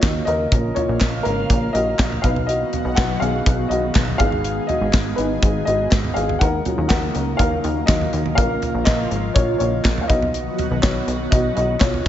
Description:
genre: piano-driven pop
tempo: 122 BPM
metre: 4/4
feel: straight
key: unclear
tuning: A4 = 441 Hz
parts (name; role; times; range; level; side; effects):
- dark upright piano; accompaniment; 0.0-12.1 s; Gb3 to F#5; -22 LUFS; left 1 dB; none
- airy breathy pad; sustained chords; 0.0-12.1 s; Db3 to F5; -26 LUFS; right 1 dB; chorus, phaser
- plucky analog bass; bass; 0.0-12.1 s; Ab1 to Eb2; -24 LUFS; equal; none
- modern studio drum kit; drums; 0.0-12.1 s; handclaps, hi-hat, kick drum, snare drum, toms; -20 LUFS; equal; none
room: light reverb, small room ambience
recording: nothing above 7.7 kHz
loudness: -17 LUFS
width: side -11 dB against mid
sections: 0.0-12.1 A section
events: upright piano solo 0.0-12.1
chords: 0.0 Ebm7; 0.5 Bbm; 2.2 B; 4.2 Abm; 6.4 Ebm7; 8.4 Bbm; 10.1 B

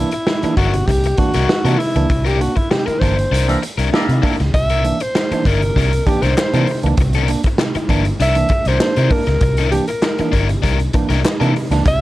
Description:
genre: funk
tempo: 98 BPM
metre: 4/4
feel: straight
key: C mixolydian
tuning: A4 = 440 Hz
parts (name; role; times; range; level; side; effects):
- breathy alto saxophone; melody; 0.0-12.0 s; E4 to E5; -20 LUFS; equal; none
- barky tine electric piano; stabs; 0.0-12.0 s; C3 to D4; -23 LUFS; right 4 dB; overdrive
- vintage muted fingered electric bass; bass; 0.0-12.0 s; G1 to C3; -17 LUFS; equal; none
- overdriven electric guitar; accompaniment; 0.1-11.9 s; D4 to Bb4; -23 LUFS; left 8 dB; none
- raw garage drum kit; drums; 0.1-12.0 s; hi-hat, kick drum, snare drum; -19 LUFS; equal; none
- clear horn section; second line; 3.5-4.4 s; G3 to Bb4; -23 LUFS; left 1 dB; none
- group handclap; percussion; 5.2-11.4 s; none; -28 LUFS; left 5 dB; none
room: little or no reverb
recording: dark, warm production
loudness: -14 LUFS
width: side -16 dB against mid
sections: 0.0-12.0 A section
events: alto saxophone solo 0.0-12.0; band accent 2.1-4.5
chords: 0.0 C9

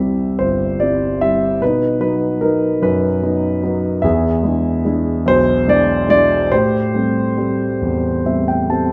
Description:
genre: classical, lyrical solo piano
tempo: 48 BPM (dotted quarters)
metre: 6/8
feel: rubato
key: A minor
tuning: A4 = 439 Hz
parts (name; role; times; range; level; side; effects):
- dark concert grand piano; solo; 0.0-8.9 s; G1 to A5; -17 LUFS; equal; none
room: moderate recital hall reverb, RT60 1.4 s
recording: none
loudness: -17 LUFS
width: mono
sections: 0.0-8.9 A section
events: grand piano fill 7.8-8.9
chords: 0.0 C; 1.6 B; 4.0 E7; 6.5 Am7

